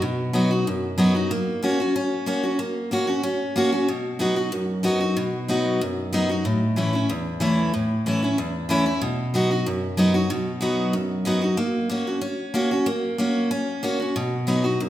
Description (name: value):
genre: bluegrass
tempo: 187 BPM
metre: 4/4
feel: straight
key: B major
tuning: A4 = 441 Hz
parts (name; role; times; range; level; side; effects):
- picked steel-string acoustic guitar; solo; 0.0-14.9 s; E2 to F#4; -21 LUFS; equal; none
room: wet recital hall reverb, RT60 1.7 s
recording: recorded in a church or concert hall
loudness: -21 LUFS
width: side -13 dB against mid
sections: 0.0-6.4 A section; 6.4-14.9 A section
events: none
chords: 0.0 B; 1.3 F#/A#; 3.9 B; 6.4 A; 9.0 B; 11.6 F#/A#; 14.2 B